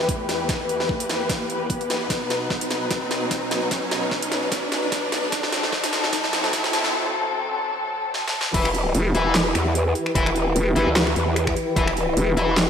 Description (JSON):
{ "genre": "heavy wobble dubstep", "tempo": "149 BPM", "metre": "4/4", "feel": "swing 54% on 16ths, half-time", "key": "E minor from 8.5 s", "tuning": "A4 = 440 Hz", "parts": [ { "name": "muted studio string section", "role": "sustained chords", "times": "0.0-12.7 s", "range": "E2 to B4", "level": "-25 LUFS", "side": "left 2 dB", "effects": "sidechain pumping, low-pass filter" }, { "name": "dubstep drum kit", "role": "drums", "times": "0.0-12.7 s", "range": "crash cymbal, finger snaps, handclaps, hi-hat, snare drum", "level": "-25 LUFS", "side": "equal", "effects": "overdrive, high-pass filter on snare, high-pass filter on hats, high-pass filter on cymbals, high-pass filter on room" }, { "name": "riser", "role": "sound effects", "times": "0.1-6.9 s", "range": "none", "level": "-29 LUFS", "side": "right 1 dB", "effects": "none" }, { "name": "electronic kick drum", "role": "drums", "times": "0.1-11.9 s", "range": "none", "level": "-27 LUFS", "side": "equal", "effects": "overdrive" }, { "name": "distorted electric guitar", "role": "stabs", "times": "8.5-12.6 s", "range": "E4 to E5", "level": "-26 LUFS", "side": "left 3 dB", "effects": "distortion, diffuse ambient delay" }, { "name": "growl bass", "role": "bass", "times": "8.5-12.7 s", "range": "E1 to E2", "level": "-23 LUFS", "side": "equal", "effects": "chorus, overdrive" }, { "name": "vowel-sweep wobble bass", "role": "bass", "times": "8.9-12.4 s", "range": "E1 to G1", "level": "-20 LUFS", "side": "equal", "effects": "chorus, overdrive" } ], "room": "wet lush hall reverb, RT60 2.1 s", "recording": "dreamy mix soaked in reverb, high-pass filter", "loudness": "-20 LUFS", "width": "side -8 dB against mid", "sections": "0.0-8.5 A section; 8.5-12.7 B section", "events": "build-up 0.0-8.5; drum fill 0.0-6.9, 8.1-8.5; filter sweep on string section 0.0-8.5; riser 0.1-6.9; break 6.9-8.5; drop 8.5-12.7", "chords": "0.0 Em; 2.1 B; 5.3 F#dim; 8.5 Em" }